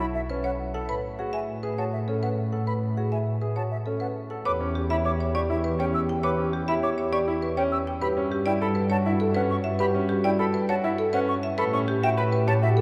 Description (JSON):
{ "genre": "classical, minimalist pattern music", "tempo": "101 BPM", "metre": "3/4", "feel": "straight", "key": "E dorian from 4.5 s", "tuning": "A4 = 440 Hz", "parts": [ { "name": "marimba with hard mallets", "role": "melody", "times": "0.0-12.8 s", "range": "G4 to G5", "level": "-32 LUFS", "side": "equal", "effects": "none" }, { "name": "clear grand piano", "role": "arpeggios", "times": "0.0-12.8 s", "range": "C#4 to C#5", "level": "-32 LUFS", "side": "equal", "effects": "none" }, { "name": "concert flute", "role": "arpeggios", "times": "0.0-12.7 s", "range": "E5 to E6", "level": "-34 LUFS", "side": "equal", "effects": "none" }, { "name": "rich studio double bass section", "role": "bass", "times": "0.0-12.8 s", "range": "B1 to A2", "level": "-30 LUFS", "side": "equal", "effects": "none" }, { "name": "clear French horn", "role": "second line", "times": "4.5-12.8 s", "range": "F#4 to G4", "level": "-35 LUFS", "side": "equal", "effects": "none" } ], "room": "wet cathedral reverb, RT60 5.0 s", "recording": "in a vast, echoing space", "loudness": "-26 LUFS", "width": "mono", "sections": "0.0-4.5 A section; 4.5-12.8 B section", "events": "none", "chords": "0.0 Bsus2; 0.9 Asus2; 4.5 Em; 8.0 Gmaj9#11; 11.6 A9" }